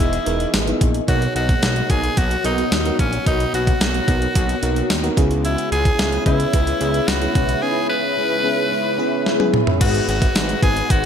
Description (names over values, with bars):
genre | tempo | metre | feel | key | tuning
1980s-style pop | 110 BPM | 4/4 | straight | B major | A4 = 442 Hz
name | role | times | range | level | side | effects
raspy tenor saxophone | melody | 0.0-11.1 s | C#4 to B4 | -23 LUFS | left 1 dB | ping-pong delay
FM electric piano | accompaniment | 0.0-11.1 s | G#2 to B5 | -25 LUFS | right 2 dB | chorus
crunchy overdriven guitar | accompaniment | 0.0-11.1 s | G#2 to E4 | -32 LUFS | left 6 dB | none
ethereal airy pad | sustained chords | 0.0-11.1 s | F#4 to B5 | -26 LUFS | left 2 dB | ensemble chorus, built-in reverb
funky polysynth comp | stabs | 0.0-11.1 s | G#3 to D#5 | -29 LUFS | left 1 dB | chorus, ping-pong delay
fat analog bass | bass | 0.0-11.1 s | E1 to D#2 | -23 LUFS | equal | none
clean 12-bit digital drum machine | drums | 0.1-11.0 s | crash cymbal, hi-hat, kick drum, snare drum, tambourine, toms | -20 LUFS | equal | gated reverb
room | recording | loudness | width
light reverb | none | -16 LUFS | side -8 dB against mid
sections
0.0-9.8 A section; 9.8-11.1 A section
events
drum fill 9.3-9.8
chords
0.0 Emaj7; 1.1 Bmaj7; 5.2 C#m7; 9.8 G#m7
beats
0.54 | 1.08 1.63 2.17 2.72 | 3.26 3.81 4.35 4.90 | 5.45 5.99 6.54 7.08 | 7.63 8.17 8.72 9.26 | 9.81 10.35 10.90